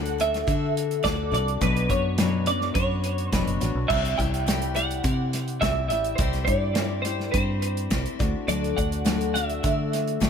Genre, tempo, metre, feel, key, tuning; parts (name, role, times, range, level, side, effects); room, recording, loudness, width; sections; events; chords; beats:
folk rock and heartland rock; 105 BPM; 4/4; straight; D mixolydian; A4 = 439 Hz
twelve-string electric guitar; melody; 0.0-10.3 s; B4 to G5; -28 LUFS; right 3 dB; analog chorus, tape echo
picked steel-string acoustic guitar; accompaniment; 0.0-10.3 s; B2 to D5; -29 LUFS; left 8 dB; tape echo
fingered electric bass; bass; 0.0-10.3 s; E1 to D3; -28 LUFS; equal
natural country drum kit; drums; 0.1-10.3 s; crash cymbal, hi-hat, kick drum, snare drum; -28 LUFS; right 1 dB; tape echo
light reverb; echo-heavy mix; -22 LUFS; side -7 dB against mid
0.0-10.3 A section
0.0 D; 1.6 Bmadd9; 3.9 Cadd9; 8.2 D
0.47 1.04 | 1.61 2.18 2.75 3.33 | 3.90 4.47 5.04 5.62 | 6.19 6.76 7.34 7.91 | 8.49 9.06 9.63 10.21